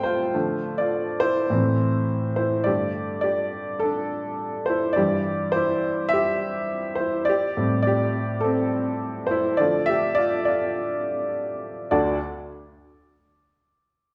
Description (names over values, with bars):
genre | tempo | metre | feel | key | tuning
pop | 104 BPM | 4/4 | swing 56% on 16ths | D minor | A4 = 439 Hz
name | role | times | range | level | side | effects
clear upright piano | solo | 0.0-12.2 s | D2 to G5 | -24 LUFS | equal | none
room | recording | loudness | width
wet large studio reverb, RT60 1.4 s | band playing live in one room | -24 LUFS | mono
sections
0.0-2.7 A section; 2.7-11.9 B section; 11.9-14.1 C section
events
upright piano solo 0.0-2.7, 2.7-11.9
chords
0.3 Dm; 1.5 Am; 2.7 Gsus2; 5.0 C/G; 7.3 Am7; 9.6 Dm; 11.9 D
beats
| 0.35 0.93 1.51 2.08 | 2.66 3.24 3.82 4.40 | 4.97 5.55 6.13 6.71 | 7.29 7.86 8.44 9.02 | 9.60 10.17 10.75 11.32 | 11.90